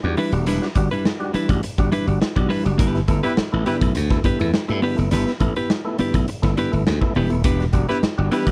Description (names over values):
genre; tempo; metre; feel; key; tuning
funk; 103 BPM; 4/4; straight; E minor; A4 = 440 Hz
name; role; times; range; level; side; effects
clean electric guitar; accompaniment; 0.0-8.5 s; G3 to B4; -25 LUFS; equal; none
percussive tonewheel organ; stabs; 0.0-8.5 s; G2 to F#4; -29 LUFS; equal; fast rotary speaker
glassy slap bass; bass; 0.0-8.5 s; D#1 to G2; -24 LUFS; equal; none
raw garage drum kit; drums; 0.2-8.5 s; hi-hat, kick drum, snare drum; -25 LUFS; equal; none
warm horn section; second line; 3.2-3.8, 7.9-8.5 s; G3 to B4; -27 LUFS; equal; none
room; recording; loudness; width
small room ambience; none; -20 LUFS; mono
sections
0.0-8.5 A section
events
none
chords
0.0 Em7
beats
| 0.47 1.05 1.63 2.21 | 2.79 3.37 3.95 4.53 | 5.12 5.70 6.28 6.86 | 7.44 8.02